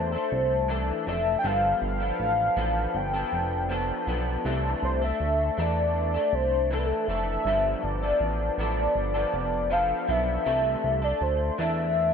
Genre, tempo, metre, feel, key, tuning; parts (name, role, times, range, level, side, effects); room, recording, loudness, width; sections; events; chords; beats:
indie pop, bedroom pop; 80 BPM; 4/4; straight; C major; A4 = 440 Hz
warm velvety synth lead; melody; 0.0-12.1 s; A4 to G5; -26 LUFS; left 1 dB; analog chorus, ping-pong delay
electric guitar through a small old amp; accompaniment; 0.0-12.1 s; G2 to A4; -29 LUFS; left 1 dB; analog chorus, vibrato effect
chorused synth bass; bass; 0.0-12.1 s; F1 to E2; -30 LUFS; right 1 dB
light reverb, digital ambience; -24 LUFS; side -6 dB against mid
0.0-12.1 A section
0.0 C69; 1.4 G9; 4.5 C69; 7.5 G9; 10.5 C69
0.69 | 1.44 2.20 2.95 3.70 | 4.45 5.20 5.95 6.70 | 7.46 8.21 8.96 9.71 | 10.46 11.21 11.96